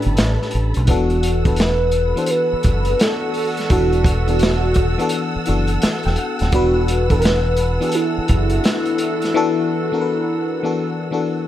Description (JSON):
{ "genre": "R&B, neo-soul", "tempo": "85 BPM", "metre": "4/4", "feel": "swing 63% on 16ths", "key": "unclear", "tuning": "A4 = 438 Hz", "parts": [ { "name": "warm velvety synth lead", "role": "melody", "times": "0.0-11.5 s", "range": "D4 to C5", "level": "-21 LUFS", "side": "right 1 dB", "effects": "chorus" }, { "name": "FM electric piano", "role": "accompaniment", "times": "0.0-11.5 s", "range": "A2 to A5", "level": "-22 LUFS", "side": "left 3 dB", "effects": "chorus" }, { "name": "warm studio string section", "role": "sustained chords", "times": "0.0-11.5 s", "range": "A4 to E6", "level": "-29 LUFS", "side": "equal", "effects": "none" }, { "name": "dark saxophone section", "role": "stabs", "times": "0.0-11.5 s", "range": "G3 to A4", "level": "-29 LUFS", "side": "right 4 dB", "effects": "none" }, { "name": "crunchy breakbeat drum kit", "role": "drums", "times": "0.0-9.3 s", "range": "hi-hat, kick drum, snare drum", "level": "-20 LUFS", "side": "equal", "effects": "none" }, { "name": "deep dub fingered electric bass", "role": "bass", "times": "0.1-8.6 s", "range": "D#1 to B1", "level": "-19 LUFS", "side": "equal", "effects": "none" } ], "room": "little or no reverb", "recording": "none", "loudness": "-16 LUFS", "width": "side -12 dB against mid", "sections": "0.0-11.5 A section", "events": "FM electric piano fill 5.5-6.5; break 9.4-11.5", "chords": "0.0 A9sus4; 0.9 E9sus4" }